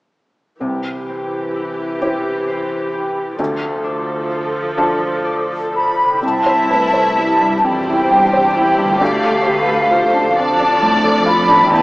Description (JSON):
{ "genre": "cinematic, emotional film score for orchestra", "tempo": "44 BPM (dotted quarters)", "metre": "6/8", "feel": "rubato", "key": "C major", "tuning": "A4 = 440 Hz", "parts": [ { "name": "felt-muted upright piano", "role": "accompaniment", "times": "0.6-11.8 s", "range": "C2 to C5", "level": "-20 LUFS", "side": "equal", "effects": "none" }, { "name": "warm studio viola section", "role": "accompaniment", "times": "0.6-11.8 s", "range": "E3 to A4", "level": "-21 LUFS", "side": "equal", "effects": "none" }, { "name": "concert harp", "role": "arpeggios", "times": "0.6-11.8 s", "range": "C3 to B5", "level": "-28 LUFS", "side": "left 1 dB", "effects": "none" }, { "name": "flute section", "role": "second line", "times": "5.8-11.8 s", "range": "F5 to B5", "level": "-14 LUFS", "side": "equal", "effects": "none" }, { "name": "warm studio violin section", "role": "second line", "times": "6.2-11.8 s", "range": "D4 to E5", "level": "-20 LUFS", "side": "equal", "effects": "none" }, { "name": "warm studio cello section", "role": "bass", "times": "6.2-11.8 s", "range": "C2 to F2", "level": "-27 LUFS", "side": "equal", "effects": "none" } ], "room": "wet scoring stage reverb, RT60 1.8 s", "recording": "small speaker sound", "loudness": "-14 LUFS", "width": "side -21 dB against mid", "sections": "0.6-6.2 A section; 6.2-11.8 B section", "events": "none", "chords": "0.6 C; 3.4 Dm; 6.2 C; 9.0 Dm", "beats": "| 0.60 2.02 | 3.39 4.78 | 6.22 7.64 | 9.01 10.36 | 11.71" }